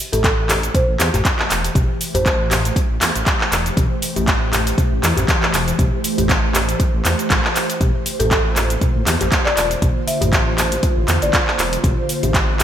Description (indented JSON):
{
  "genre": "afro house",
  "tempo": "119 BPM",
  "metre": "4/4",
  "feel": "swing 56% on 16ths",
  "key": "A phrygian",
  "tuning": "A4 = 440 Hz",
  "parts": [
    { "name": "ethereal airy pad", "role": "sustained chords", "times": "0.5-12.6 s", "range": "D3 to C5", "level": "-25 LUFS", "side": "right 1 dB", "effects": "ensemble chorus, built-in reverb, sidechain pumping" },
    { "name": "folk marimba with medium mallets", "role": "melody", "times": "0.1-2.3, 8.2-11.7 s", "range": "A4 to E5", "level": "-24 LUFS", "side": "equal", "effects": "digital delay" },
    { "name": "dark detuned saw bass", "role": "bass", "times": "0.1-12.6 s", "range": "E1 to E2", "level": "-22 LUFS", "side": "equal", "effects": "sidechain pumping" },
    { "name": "afro-pop drum kit", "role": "drums", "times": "0.1-12.6 s", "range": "handclaps, hi-hat, shaker, toms", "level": "-19 LUFS", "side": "equal", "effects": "gated reverb" },
    { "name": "djembe", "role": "percussion", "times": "0.1-12.6 s", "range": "none", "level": "-28 LUFS", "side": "left 2 dB", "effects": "none" },
    { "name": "electronic kick drum", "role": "drums", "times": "0.2-12.5 s", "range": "none", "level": "-19 LUFS", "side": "equal", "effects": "none" }
  ],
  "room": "moderate lush hall reverb, RT60 1.6 s, digital ambience",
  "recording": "bright 1980s-style digital production",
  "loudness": "-15 LUFS",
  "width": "side -10 dB against mid",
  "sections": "0.0-12.6 A section",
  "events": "none",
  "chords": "0.0 Am7; 7.8 Bbadd9",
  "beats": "0.24 0.75 1.25 | 1.75 2.26 2.76 3.27 | 3.77 4.28 4.78 5.28 | 5.79 6.29 6.80 7.30 | 7.80 8.31 8.81 9.32 | 9.82 10.33 10.83 11.33 | 11.84 12.34"
}